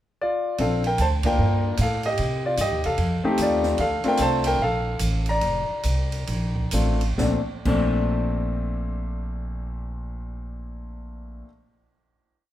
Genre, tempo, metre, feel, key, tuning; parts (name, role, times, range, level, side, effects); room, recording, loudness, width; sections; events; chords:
jazz piano trio; 127-151 BPM; 4/4; swing 64% on 8ths; Bb major; A4 = 441 Hz
clear concert grand piano; melody; 0.2-11.5 s; Bb2 to Bb5; -24 LUFS; left 1 dB
upright bass; bass; 0.6-11.4 s; F1 to C3; -25 LUFS; equal
open jazz drum kit; drums; 0.6-7.8 s; crash cymbal, hi-hat, kick drum, ride cymbal, snare drum; -32 LUFS; right 2 dB
light reverb; -21 LUFS; side -13 dB against mid
0.0-0.6 pickup bar; 0.6-7.2 A section; 7.2-11.0 final chord
band accent 1.2; slowing down 3.8-7.2
0.0 N.C.; 0.6 Bbmaj9; 1.4 Gm9; 2.2 Cm; 3.0 F9; 3.8 Bbmaj9